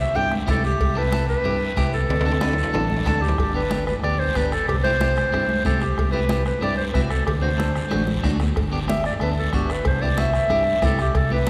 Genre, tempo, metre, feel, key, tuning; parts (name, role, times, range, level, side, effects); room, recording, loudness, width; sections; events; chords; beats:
latin, cumbia; 186 BPM; 4/4; straight; G major; A4 = 442 Hz
clear clarinet; melody; 0.0-11.5 s; G4 to G5; -26 LUFS; equal
fingered electric bass; bass; 0.0-11.5 s; G1 to G2; -26 LUFS; equal
clean electric guitar; accompaniment; 0.1-11.5 s; A3 to B4; -32 LUFS; equal
guiro; percussion; 0.1-11.5 s; -41 LUFS; equal
congas; percussion; 0.2-11.5 s; -33 LUFS; equal
cowbell and timbales; percussion; 0.2-11.3 s; -36 LUFS; equal
bombo; percussion; 0.3-11.5 s; -30 LUFS; equal
wet cathedral reverb, RT60 5.3 s; recorded in a church or concert hall; -21 LUFS; mono
0.0-3.4 A section; 3.4-11.5 A section
drum fill 2.1-3.4, 7.9-8.6
0.0 C; 2.1 D; 3.4 G; 4.7 C; 7.3 D7; 8.6 G; 9.9 C
0.15 0.48 | 0.80 1.13 1.45 1.77 | 2.10 2.42 2.75 3.07 | 3.39 3.72 4.04 4.36 | 4.69 5.01 5.33 5.66 | 5.98 6.30 6.63 6.95 | 7.28 7.60 7.92 8.24 | 8.57 8.89 9.21 9.54 | 9.86 10.18 10.51 10.83 | 11.15 11.47